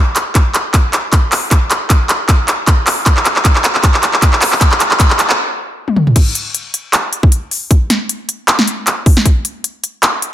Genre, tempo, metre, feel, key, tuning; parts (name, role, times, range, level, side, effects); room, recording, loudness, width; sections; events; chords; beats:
future bass; 155 BPM; 4/4; swing 55% on 16ths, half-time
big-room dance drum kit; drums; 0.2-10.3 s; crash cymbal, handclaps, hi-hat, snare drum, toms; -12 LUFS; equal; overdrive, studio reverb
electronic kick drum; drums; 0.4-9.3 s; -10 LUFS; equal; studio reverb
moderate digital room reverb, RT60 1.1 s; dense, heavily limited modern master; -10 LUFS; side -12 dB against mid
0.0-6.2 A section; 6.2-10.3 B section
build-up 0.0-6.2; drum fill 0.0-5.4, 5.9; stop 5.4-6.2; drop 6.2-10.3
0.35 0.74 1.13 | 1.51 1.90 2.29 2.67 | 3.06 3.45 3.83 4.22 | 4.61 5.00 5.38 5.77 | 6.16 6.54 6.93 7.32 | 7.71 8.09 8.48 8.87 | 9.26 9.64 10.03